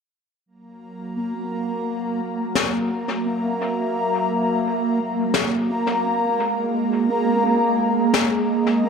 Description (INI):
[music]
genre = ambient dub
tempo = 86 BPM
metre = 4/4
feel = swing 58% on 16ths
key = unclear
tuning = A4 = 440 Hz
[part]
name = warm analog pad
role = sustained chords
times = 0.5-8.9 s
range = F#3 to E5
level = -28 LUFS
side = right 1 dB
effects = chorus
[part]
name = bubbling stepped-filter texture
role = texture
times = 1.0-8.9 s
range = A#3 to A#5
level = -21 LUFS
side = right 1 dB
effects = chorus, built-in reverb
[part]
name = snare drum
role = drums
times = 2.6-8.3 s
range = none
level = -24 LUFS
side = left 4 dB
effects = dub echo
[sound]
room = light reverb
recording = none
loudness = -19 LUFS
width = side -6 dB against mid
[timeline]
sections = 0.5-8.9 A section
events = fade-in on analog synth pad 0.5-8.9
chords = 0.5 F#7; 6.0 G#5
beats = | 0.46 1.16 1.86 2.55 | 3.25 3.95 4.65 5.34 | 6.04 6.74 7.44 8.13 | 8.83